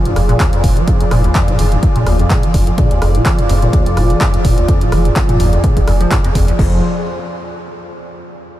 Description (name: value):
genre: acid house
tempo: 126 BPM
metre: 4/4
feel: swing 54% on 16ths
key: F dorian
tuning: A4 = 441 Hz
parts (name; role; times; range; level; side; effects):
- warm analog pad; sustained chords; 0.0-6.8 s; F3 to D5; -20 LUFS; equal; chorus, sidechain pumping
- liquid acid bass; riff; 0.0-6.8 s; Eb2 to F3; -18 LUFS; equal; tube saturation, ensemble chorus, cassette tape, sidechain pumping
- saturated sub bass; bass; 0.1-6.8 s; F1; -16 LUFS; equal; sidechain pumping
- punchy analog drum machine; drums; 0.1-6.7 s; crash cymbal, handclaps, hi-hat, rim click, toms; -22 LUFS; equal; none
- electronic kick drum; drums; 0.4-6.7 s; none; -15 LUFS; equal; none
room: light reverb, studio ambience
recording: none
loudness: -11 LUFS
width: side -14 dB against mid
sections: 0.0-6.6 A section; 6.6-8.5 B section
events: none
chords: 0.0 Fm